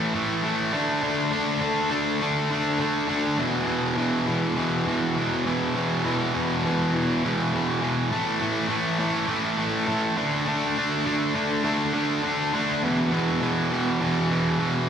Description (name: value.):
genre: rock.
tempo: 102 BPM.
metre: 4/4.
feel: straight.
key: unclear.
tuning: A4 = 440 Hz.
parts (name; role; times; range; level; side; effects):
cranked stack guitar; solo; 0.0-14.9 s; E2 to D4; -22 LUFS; equal; overdrive, slapback echo.
room: moderate lush hall reverb, RT60 3.1 s.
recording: live gig heard through the venue's PA, recital hall reverb.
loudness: -22 LUFS.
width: side -8 dB against mid.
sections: 0.0-14.9 A section.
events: none.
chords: 0.0 A5; 0.7 D5; 3.4 E5; 8.1 A5; 10.2 D5; 12.8 E5.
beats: 0.43 | 1.02 1.61 2.21 2.79 | 3.39 3.98 4.57 5.16 | 5.75 6.34 6.93 7.52 | 8.11 8.70 9.29 9.88 | 10.47 11.05 11.64 12.23 | 12.82 13.41 14.00 14.59.